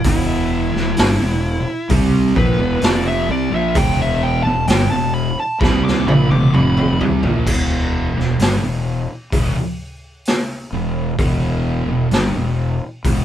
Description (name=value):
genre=stoner and doom metal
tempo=65 BPM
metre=4/4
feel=straight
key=E phrygian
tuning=A4 = 440 Hz
part: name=fuzz lead guitar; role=melody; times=0.0-7.0 s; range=E4 to D6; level=-22 LUFS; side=equal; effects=distortion
part: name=thick fuzz guitar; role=riff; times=0.0-13.2 s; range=E2 to C4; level=-19 LUFS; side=equal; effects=distortion
part: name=fuzz fingered electric bass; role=bass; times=0.0-13.2 s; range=E1 to C2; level=-22 LUFS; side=equal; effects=overdrive
part: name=raw garage drum kit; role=drums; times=0.0-13.2 s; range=crash cymbal, hi-hat, kick drum, snare drum, toms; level=-18 LUFS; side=equal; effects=none
room=moderate studio ambience, RT60 0.5 s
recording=band playing live in one room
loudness=-15 LUFS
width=side -11 dB against mid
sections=0.0-7.5 A section; 7.5-13.2 B section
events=lead electric guitar solo 0.0-7.5; drum fill 5.6-7.5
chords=0.0 Em